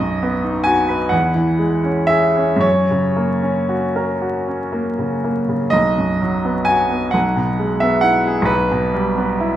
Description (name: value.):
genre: classical, romantic nocturne for solo piano.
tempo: 36-45 BPM (dotted quarters).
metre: 6/8.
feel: rubato.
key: B major.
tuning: A4 = 440 Hz.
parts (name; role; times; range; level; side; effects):
bright grand piano; solo; 0.0-9.6 s; B1 to G#5; -15 LUFS; equal; none.
room: moderate recital hall reverb, RT60 1.5 s.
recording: minimal, uncompressed stereo recording, vinyl crackle.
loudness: -15 LUFS.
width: side -12 dB against mid.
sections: 0.0-9.6 A section.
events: none.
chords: 0.0 B; 1.1 C#m/E; 2.6 F#; 5.7 B; 7.1 E/B; 8.5 Em/B.